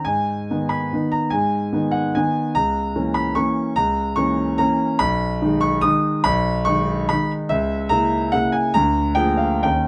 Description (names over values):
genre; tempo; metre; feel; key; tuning
classical, piano waltz; 145 BPM; 3/4; uneven beats, rubato; G# minor; A4 = 436 Hz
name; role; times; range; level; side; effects
warm concert grand piano; solo; 0.0-9.9 s; B1 to D#6; -20 LUFS; equal; none
room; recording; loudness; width
light reverb; close, detailed microphones; -20 LUFS; mono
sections
0.0-9.9 A section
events
none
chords
0.1 G#m; 2.6 A#dim/C#; 5.0 G#m/B; 7.5 A#dim/C#; 8.8 A#7/D